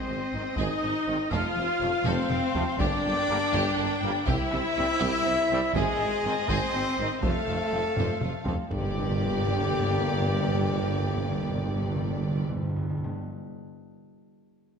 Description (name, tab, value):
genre	cinematic, epic orchestral film score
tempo	81 BPM (dotted quarters)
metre	6/8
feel	straight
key	G dorian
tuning	A4 = 440 Hz
part	dark symphonic violin section	melody	0.0-12.4 s	D5 to G5	-36 LUFS	left 3 dB	none
part	hollow concert flute	second line	0.0-12.4 s	G5 to F6	-37 LUFS	left 4 dB	none
part	warm symphonic violin section	second line	0.0-12.4 s	Bb3 to D5	-37 LUFS	left 2 dB	none
part	rich symphonic viola section	accompaniment	0.0-12.4 s	Ab3 to G4	-35 LUFS	equal	none
part	mellow French horn section	sustained chords	0.0-12.4 s	Ab3 to G4	-31 LUFS	left 3 dB	none
part	warm trumpet	stabs	0.0-12.4 s	G4 to F5	-34 LUFS	equal	none
part	mellow tuba	bass	0.1-12.4 s	F1 to C2	-35 LUFS	right 4 dB	none
part	warm studio cello section	bass	0.1-12.4 s	F2 to C3	-35 LUFS	right 3 dB	none
part	warm symphonic double bass section	bass	0.1-12.4 s	F1 to C2	-35 LUFS	right 4 dB	none
part	warm trombone section	sustained chords	0.3-12.4 s	D3 to C4	-39 LUFS	right 3 dB	none
part	taiko ensemble	drums	0.6-8.7 s	none	-33 LUFS	left 1 dB	none
part	timpani	percussion	2.8-3.5, 8.7-13.1 s	G2	-31 LUFS	equal	none
part	impact	sound effects	8.7-10.2 s	none	-43 LUFS	left 1 dB	none
room	wet scoring stage reverb, RT60 1.5 s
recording	none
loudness	-24 LUFS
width	side -6 dB against mid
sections	0.0-8.7 A section; 8.7-11.7 B section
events	drum fill 2.1-2.8, 8.0-8.7; impact 8.7-10.2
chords	0.0 Ab; 1.3 F; 2.8 Gm; 4.3 C; 5.8 Ab; 7.2 F; 8.7 Gm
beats	0.58 | 1.32 2.06 | 2.80 3.54 | 4.28 5.01 | 5.75 6.49 | 7.23 7.97 | 8.71 9.44 | 10.18 10.92